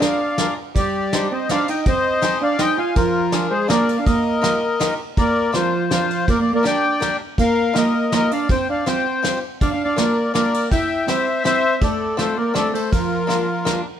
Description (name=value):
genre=musette waltz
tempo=162 BPM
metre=3/4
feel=straight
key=Eb major, Bb major from 5.2 s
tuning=A4 = 439 Hz
part: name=accordion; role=melody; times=0.0-13.8 s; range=F4 to Ab5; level=-20 LUFS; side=left 3 dB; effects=light tremolo tuning
part: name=vintage hollow-body jazz guitar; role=second line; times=0.0-13.8 s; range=F3 to F4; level=-22 LUFS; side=right 4 dB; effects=none
part: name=bluegrass banjo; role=accompaniment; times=0.0-13.9 s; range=Bb3 to D5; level=-27 LUFS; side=left 3 dB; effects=none
part: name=soft brush drum kit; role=drums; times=0.0-13.8 s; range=kick drum, ride cymbal, snare drum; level=-24 LUFS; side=equal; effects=none
room=light reverb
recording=none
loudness=-17 LUFS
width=side -9 dB against mid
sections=0.0-5.2 A section; 5.2-14.0 B section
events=none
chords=0.0 Bb7; 0.8 Cmadd9; 1.9 Abmaj7; 3.0 Bb7; 4.1 Ebadd9; 5.2 Bbadd9; 6.3 Gm/Bb; 7.4 Ebadd9; 8.5 Fsus2; 9.6 Bb; 10.7 C; 11.8 F6; 12.9 Bb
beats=0.01 0.38 | 0.75 1.12 1.49 | 1.86 2.23 2.59 | 2.96 3.32 3.69 | 4.05 4.42 4.79 | 5.16 5.53 5.90 | 6.27 6.64 7.01 | 7.37 7.74 8.11 | 8.48 8.85 9.23 | 9.60 9.97 10.34 | 10.71 11.08 11.45 | 11.82 12.19 12.55 | 12.92 13.29 13.66